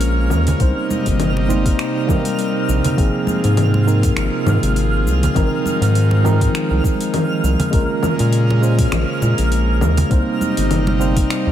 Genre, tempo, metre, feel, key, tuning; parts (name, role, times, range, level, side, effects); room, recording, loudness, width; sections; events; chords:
sunset chillout; 101 BPM; 4/4; swing 55% on 16ths; Ab major; A4 = 440 Hz
mellow tine electric piano; accompaniment; 0.0-11.5 s; F3 to C5; -21 LUFS; right 1 dB; auto-pan, digital delay
airy breathy pad; sustained chords; 0.0-11.5 s; C3 to Eb4; -23 LUFS; equal; chorus
round analog bass; bass; 0.0-11.5 s; G1 to Bb2; -17 LUFS; equal
smooth R&B drum kit; drums; 0.0-11.4 s; cabasa, congas, finger snaps, hi-hat; -24 LUFS; left 2 dB
twinkling granular texture; texture; 0.0-11.5 s; F6; -27 LUFS; right 2 dB; built-in reverb
congas; percussion; 0.5-11.3 s; -26 LUFS; right 1 dB
electronic kick drum; drums; 0.6-11.3 s; -18 LUFS; equal
light reverb, digital ambience; -14 LUFS; side -11 dB against mid
0.0-11.5 A section
0.0 Bbm7; 0.6 Cm7; 3.0 Ab69; 7.7 Bbm7; 10.1 Cm7